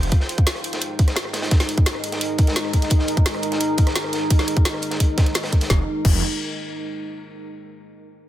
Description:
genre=dark technical drum and bass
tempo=172 BPM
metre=4/4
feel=straight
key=unclear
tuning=A4 = 437 Hz
part: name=deep dark ambient pad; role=sustained chords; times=0.0-5.9 s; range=Ab3 to Bb4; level=-26 LUFS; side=equal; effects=chorus, built-in reverb, sidechain pumping
part: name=wide detuned saw bass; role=bass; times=0.0-0.1, 5.7-6.2 s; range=F1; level=-25 LUFS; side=equal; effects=chorus, tube saturation, sidechain pumping
part: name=drum and bass drum kit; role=drums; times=0.0-6.1 s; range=crash cymbal, hi-hat, rim click, snare drum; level=-25 LUFS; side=equal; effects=soft clipping on snare
part: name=crunchy breakbeat drum kit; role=drums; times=0.1-5.7 s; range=hi-hat, snare drum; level=-30 LUFS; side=equal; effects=high-pass filter on hats, high-pass filter on snare, high-pass filter on room
part: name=electronic kick drum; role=drums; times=0.1-6.1 s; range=none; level=-16 LUFS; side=equal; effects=overdrive
room=light reverb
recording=dense, heavily limited modern master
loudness=-18 LUFS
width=side -13 dB against mid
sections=0.0-5.7 A section; 5.7-7.1 B section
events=none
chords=0.1 Absus2; 5.7 F5

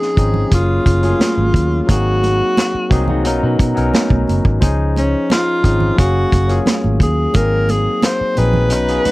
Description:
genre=lush 1970s-style soul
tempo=88 BPM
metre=4/4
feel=straight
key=unclear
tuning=A4 = 440 Hz
part: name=warm tenor saxophone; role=melody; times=0.0-9.1 s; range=Db4 to C5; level=-18 LUFS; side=equal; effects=none
part: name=barky tine electric piano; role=accompaniment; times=0.0-9.1 s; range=Bb2 to F5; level=-20 LUFS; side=left 3 dB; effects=overdrive
part: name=vintage drum kit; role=drums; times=0.0-9.1 s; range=hi-hat, kick drum, snare drum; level=-16 LUFS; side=equal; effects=none
part: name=vintage muted fingered electric bass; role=bass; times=0.2-9.1 s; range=Gb1 to Cb3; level=-17 LUFS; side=equal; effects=none
part: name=congas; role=percussion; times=0.3-9.1 s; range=none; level=-24 LUFS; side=right 5 dB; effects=none
part: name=electric guitar through a small old amp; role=riff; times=2.9-4.4, 8.9-9.1 s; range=Cb4 to Ab4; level=-23 LUFS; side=right 3 dB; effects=none
room=little or no reverb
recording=dry, close 1970s-style studio recording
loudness=-13 LUFS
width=side -19 dB against mid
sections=0.0-9.1 A section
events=none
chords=0.0 Dbmaj7; 0.5 Gbmaj9; 1.9 Ab7; 3.3 Cbmaj9; 4.6 Dbmaj7; 6.0 Gbmaj9; 7.3 Ab7

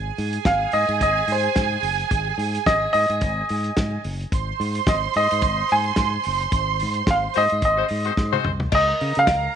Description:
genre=disco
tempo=109 BPM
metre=4/4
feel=swing 56% on 16ths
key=unclear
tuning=A4 = 443 Hz
part: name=dark studio string section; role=second line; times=0.0-9.6 s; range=Ab4 to C6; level=-25 LUFS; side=right 10 dB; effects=none
part: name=fingered electric bass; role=bass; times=0.0-9.5 s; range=Gb1 to Db3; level=-27 LUFS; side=left 1 dB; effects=none
part: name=warm soul drum kit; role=drums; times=0.2-9.4 s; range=crash cymbal, hi-hat, kick drum, snare drum, toms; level=-26 LUFS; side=equal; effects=none
part: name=warm baby grand piano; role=melody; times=0.5-9.6 s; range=C5 to Ab5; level=-21 LUFS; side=equal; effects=none
part: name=warm horn section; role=stabs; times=7.3-8.5 s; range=Ab3 to C5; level=-26 LUFS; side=left 14 dB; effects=none
part: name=cowbell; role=percussion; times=8.7-9.4 s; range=none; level=-30 LUFS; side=left 13 dB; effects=none
room=light reverb, small room ambience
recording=1960s-style stereo with parts hard left and right, nothing above 10.6 kHz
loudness=-19 LUFS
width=side -8 dB against mid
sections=0.0-8.7 A section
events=band accent 6.5-8.7; drum fill 8.2-8.7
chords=0.0 Ab; 8.7 Db

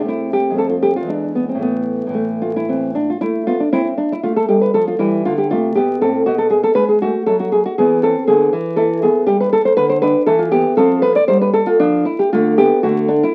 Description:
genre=classical, baroque-style dance for nylon-string guitar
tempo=118 BPM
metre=3/4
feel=rubato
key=A minor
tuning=A4 = 445 Hz
part: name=nylon-string guitar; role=solo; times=0.0-13.3 s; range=E2 to D5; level=-16 LUFS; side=equal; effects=none
room=moderate studio ambience, RT60 0.5 s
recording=very old 78 rpm record, vinyl crackle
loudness=-16 LUFS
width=mono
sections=0.0-3.2 A section; 3.2-13.3 B section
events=none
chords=0.1 Am/C; 0.6 F; 1.1 E7; 1.6 A5; 3.2 Am; 4.8 F; 6.3 B5; 7.8 E5; 9.3 Em; 10.8 F5; 12.3 Dm; 12.8 D

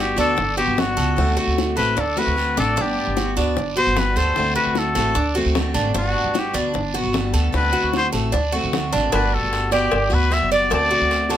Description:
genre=latin, Cuban son and guajira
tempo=151 BPM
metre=4/4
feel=straight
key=G major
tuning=A4 = 440 Hz
part: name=trumpet with straight mute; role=melody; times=0.0-11.4 s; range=F#4 to E5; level=-21 LUFS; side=left 2 dB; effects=none
part: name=picked steel-string acoustic guitar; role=accompaniment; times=0.0-11.4 s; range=D3 to F#4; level=-26 LUFS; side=left 2 dB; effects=none
part: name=Cuban tres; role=arpeggios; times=0.0-11.4 s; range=D4 to D5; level=-24 LUFS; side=right 3 dB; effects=none
part: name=upright bass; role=bass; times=0.0-11.4 s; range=F#1 to D2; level=-24 LUFS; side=right 1 dB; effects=none
part: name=guiro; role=percussion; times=0.2-11.4 s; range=none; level=-32 LUFS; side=right 4 dB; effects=none
part: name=bongos and cowbell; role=percussion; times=0.4-11.4 s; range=none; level=-27 LUFS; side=left 4 dB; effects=none
room=light reverb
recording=close, detailed microphones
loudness=-17 LUFS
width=side -11 dB against mid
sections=0.0-9.1 A section; 9.1-11.4 B section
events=muted trumpet solo 0.0-9.1; drum fill 2.2-2.8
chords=0.0 Gmaj7; 1.2 D7; 2.8 Gmaj7; 4.4 D7; 6.0 Gmaj7; 7.5 D7; 9.1 Gmaj7; 10.7 D7

